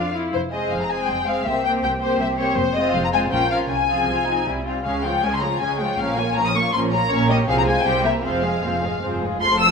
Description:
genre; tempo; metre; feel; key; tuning
quick classical-period movement for symphony orchestra; 159 BPM; 3/4; rubato; F minor; A4 = 439 Hz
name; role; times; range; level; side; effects
warm studio violin section; melody; 0.0-9.7 s; C5 to E6; -22 LUFS; left 4 dB; none
rich studio violin section; second line; 0.0-9.7 s; Db4 to F5; -25 LUFS; left 1 dB; none
rich studio viola section; accompaniment; 0.0-9.7 s; F3 to F4; -25 LUFS; right 1 dB; none
rich studio cello section; bass; 0.0-9.7 s; C2 to F4; -31 LUFS; right 2 dB; none
rich studio double bass section; bass; 0.0-9.7 s; F1 to F2; -29 LUFS; right 3 dB; none
room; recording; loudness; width
wet recital hall reverb, RT60 1.5 s; minimal, uncompressed stereo recording; -18 LUFS; side -5 dB against mid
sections
0.3-9.4 A section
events
none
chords
0.3 Fm; 1.5 C5; 2.6 Fm; 3.3 Bbm; 3.7 Fm/C; 4.5 C; 4.9 Db; 6.0 Bbm; 7.1 Gdim/Bb; 7.5 Fm/C; 7.8 C7; 8.2 Fm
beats
| 0.33 0.71 1.08 | 1.46 1.83 2.20 | 2.56 2.94 3.31 | 3.69 4.08 4.47 | 4.86 5.24 5.62 | 5.99 6.36 6.74 | 7.10 7.48 7.85 | 8.23 8.63 9.02 | 9.41

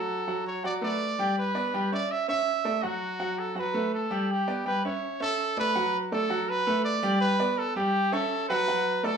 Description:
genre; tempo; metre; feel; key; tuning
latin; 164 BPM; 4/4; straight; unclear; A4 = 440 Hz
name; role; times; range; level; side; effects
bright trumpet; melody; 0.0-9.2 s; F#4 to E5; -28 LUFS; right 2 dB; none
bright grand piano; accompaniment; 0.0-9.2 s; F#3 to G5; -28 LUFS; equal; none
room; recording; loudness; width
moderate studio reverb, RT60 0.8 s; small room ambience; -25 LUFS; side -6 dB against mid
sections
0.0-5.8 A section; 5.8-9.2 B section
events
none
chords
0.0 N.C.; 0.6 Bm7; 1.4 G; 2.1 A; 2.8 N.C.; 3.6 B5; 4.3 G; 5.0 A; 5.8 D; 6.5 Bm7; 7.2 G; 7.9 A7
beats
0.27 0.64 1.00 | 1.37 1.74 2.10 2.47 | 2.83 3.20 3.56 3.93 | 4.29 4.66 5.02 5.39 | 5.75 6.12 6.49 6.85 | 7.21 7.58 7.94 8.31 | 8.67 9.04

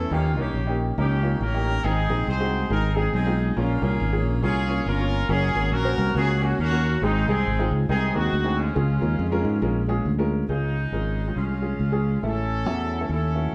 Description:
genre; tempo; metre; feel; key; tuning
uptempo gospel; 139 BPM; 4/4; swing 59% on 8ths; Db major; A4 = 442 Hz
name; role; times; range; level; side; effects
clear horn section; melody; 0.0-13.5 s; Ab3 to C5; -30 LUFS; equal; none
clear upright piano; accompaniment; 0.0-13.5 s; Ab2 to Db5; -30 LUFS; equal; none
fingered electric bass; bass; 0.0-13.5 s; Gb1 to Ab2; -26 LUFS; equal; none
room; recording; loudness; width
wet stone room reverb, RT60 1.1 s; band playing live in one room; -24 LUFS; mono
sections
0.0-10.5 A section; 10.5-13.5 B section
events
none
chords
0.1 Eb7; 1.8 Ab; 3.6 Bbm; 5.3 Gb; 7.0 Ab; 8.8 Db; 12.2 A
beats
| 0.12 0.55 0.98 1.41 | 1.84 2.27 2.71 3.14 | 3.57 4.00 4.43 4.86 | 5.30 5.73 6.16 6.59 | 7.03 7.46 7.89 8.32 | 8.76 9.19 9.62 10.05 | 10.49 10.92 11.36 11.79 | 12.23 12.66 13.10 13.53

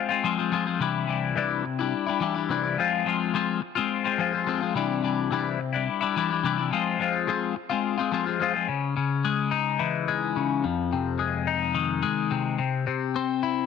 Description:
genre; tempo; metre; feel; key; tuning
rock; 214 BPM (eighths); 7/8; straight; unclear; A4 = 440 Hz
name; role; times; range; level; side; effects
twelve-string electric guitar; solo; 0.0-13.7 s; F2 to F4; -24 LUFS; left 8 dB; phaser
room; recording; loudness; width
light reverb, digital ambience; none; -24 LUFS; side -6 dB against mid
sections
0.0-8.7 A section; 8.7-13.7 B section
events
none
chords
0.0 Fm; 0.8 Cadd9; 2.8 Fm; 4.8 Cadd9; 6.7 Fm; 8.7 C#madd9; 10.6 Fm7; 12.6 C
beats
0.25 0.53 | 0.81 1.09 1.38 1.66 1.94 2.22 2.50 | 2.78 3.06 3.34 3.62 3.91 4.19 4.47 | 4.75 5.03 5.31 5.59 5.87 6.16 6.44 | 6.72 7.00 7.28 7.56 7.84 8.12 8.40 | 8.68 8.96 9.24 9.52 9.80 10.08 10.36 | 10.64 10.92 11.20 11.48 11.76 12.04 12.31 | 12.59 12.87 13.15 13.43

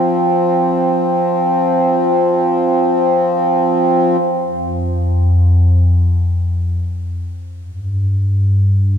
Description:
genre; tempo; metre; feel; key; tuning
ambient; free time; none; none; unclear; A4 = 440 Hz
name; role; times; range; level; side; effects
pedal harmonium; drone; 0.0-4.2 s; F3 to C4; -14 LUFS; equal; none
deep rumbling drone; bass; 4.7-9.0 s; F2 to G2; -13 LUFS; left 1 dB; built-in reverb
room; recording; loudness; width
wet cathedral reverb, RT60 4.9 s; none; -13 LUFS; side -8 dB against mid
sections
0.0-4.1 A section; 4.1-9.0 B section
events
none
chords
0.0 F5; 4.1 N.C.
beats
free time

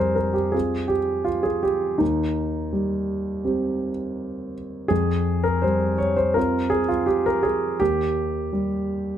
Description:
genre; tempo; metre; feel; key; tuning
neoclassical minimalist piano; 82 BPM; 4/4; rubato; F minor; A4 = 440 Hz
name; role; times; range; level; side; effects
warm grand piano; solo; 0.0-9.2 s; Eb2 to Db5; -21 LUFS; equal; none
room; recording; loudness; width
moderate studio ambience, RT60 0.5 s; none; -21 LUFS; side -10 dB against mid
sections
0.0-9.2 A section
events
none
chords
0.0 Fmadd9; 2.0 Cm/Eb; 4.9 Fsus2; 7.8 Eb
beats
0.54 1.27 | 2.01 2.74 3.46 4.18 | 4.91 5.63 6.36 7.08 | 7.80 8.53

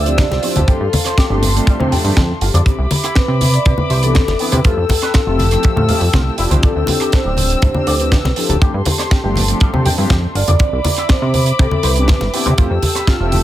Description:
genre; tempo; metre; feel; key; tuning
nu-disco, nu disco; 121 BPM; 4/4; straight; unclear; A4 = 442 Hz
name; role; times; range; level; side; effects
vibraphone with soft mallets; melody; 0.0-13.4 s; F4 to D5; -22 LUFS; equal; diffuse ambient delay
muted studio string section; sustained chords; 0.0-13.4 s; C4 to E6; -24 LUFS; left 3 dB; sidechain pumping
chorused synth bass; bass; 0.0-13.4 s; D1 to C3; -16 LUFS; equal; sidechain pumping
mellow synth brass; accompaniment; 0.1-13.4 s; E3 to G4; -23 LUFS; equal; chorus, diffuse ambient delay
tight funk drum kit; drums; 0.1-13.4 s; hi-hat, rim click, snare drum; -22 LUFS; right 3 dB; none
electric guitar with an envelope filter; riff; 0.2-13.2 s; C3 to G5; -27 LUFS; equal; analog chorus, diffuse ambient delay
kick drum; drums; 0.2-13.2 s; none; -14 LUFS; equal; none
congas; percussion; 0.2-13.4 s; none; -21 LUFS; left 1 dB; none
room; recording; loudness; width
light reverb; none; -12 LUFS; side -13 dB against mid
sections
0.0-13.4 A section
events
none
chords
0.0 Dm11; 0.7 G9sus4; 2.7 Cmaj9; 4.6 Fmaj9; 6.6 Dm11; 8.6 G9sus4; 10.6 Cmaj9; 12.6 Fmaj9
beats
0.18 | 0.68 1.18 1.67 2.17 | 2.66 3.16 3.66 4.15 | 4.65 5.14 5.64 6.13 | 6.63 7.13 7.62 8.12 | 8.62 9.11 9.61 10.10 | 10.60 11.09 11.59 12.09 | 12.58 13.08

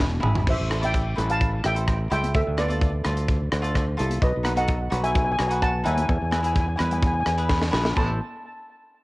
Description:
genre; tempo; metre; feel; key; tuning
calypso; 128 BPM; 4/4; straight; A minor; A4 = 440 Hz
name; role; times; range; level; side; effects
cavaquinho; accompaniment; 0.0-8.2 s; D#4 to E5; -31 LUFS; equal; cassette tape
fingered electric bass; bass; 0.0-8.2 s; E1 to E2; -25 LUFS; equal; none
tight funk drum kit; drums; 0.0-8.1 s; crash cymbal, hi-hat, kick drum, rim click, snare drum, toms; -26 LUFS; equal; cassette tape
congas; percussion; 0.0-8.2 s; none; -36 LUFS; left 3 dB; none
steel pan; melody; 0.5-8.2 s; A4 to A5; -27 LUFS; equal; cassette tape, tape echo
room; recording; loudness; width
light reverb, small room ambience; home recording on cassette; -21 LUFS; side -21 dB against mid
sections
0.5-8.0 A section; 8.0-9.0 B section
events
drum fill 0.0-0.5, 7.5-8.0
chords
0.5 Am7; 2.3 Dm; 4.2 B; 6.1 E; 8.0 Am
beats
0.01 | 0.47 0.94 1.41 1.88 | 2.35 2.81 3.28 3.75 | 4.22 4.69 5.16 5.63 | 6.09 6.56 7.03 7.50 | 7.97

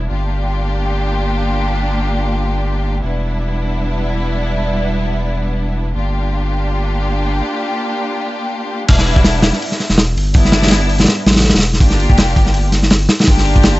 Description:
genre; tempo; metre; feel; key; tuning
drum and bass, jungle; 164 BPM; 4/4; swing 55% on 16ths; unclear; A4 = 441 Hz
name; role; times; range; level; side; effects
rich symphonic string section; sustained chords; 0.0-13.8 s; G3 to G4; -20 LUFS; left 1 dB; none
saturated sub bass; bass; 0.0-13.8 s; E1 to A1; -17 LUFS; equal; none
crunchy breakbeat drum kit; drums; 8.9-13.7 s; crash cymbal, hi-hat, kick drum, snare drum; -12 LUFS; equal; none
room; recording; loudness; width
light reverb, small room ambience; nothing above 7.9 kHz; -13 LUFS; side -18 dB against mid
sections
0.0-8.9 A section; 8.9-13.8 B section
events
drop 8.9-13.8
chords
0.1 Gm7; 3.0 Em7; 6.0 Gm7; 8.9 Em7; 11.8 Gm7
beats
| 0.10 0.47 0.84 1.20 | 1.57 1.93 2.30 2.67 | 3.03 3.40 3.76 4.13 | 4.50 4.86 5.23 5.59 | 5.96 6.32 6.69 7.06 | 7.42 7.79 8.15 8.52 | 8.88 9.25 9.62 9.98 | 10.35 10.71 11.08 11.45 | 11.81 12.18 12.54 12.91 | 13.28 13.64

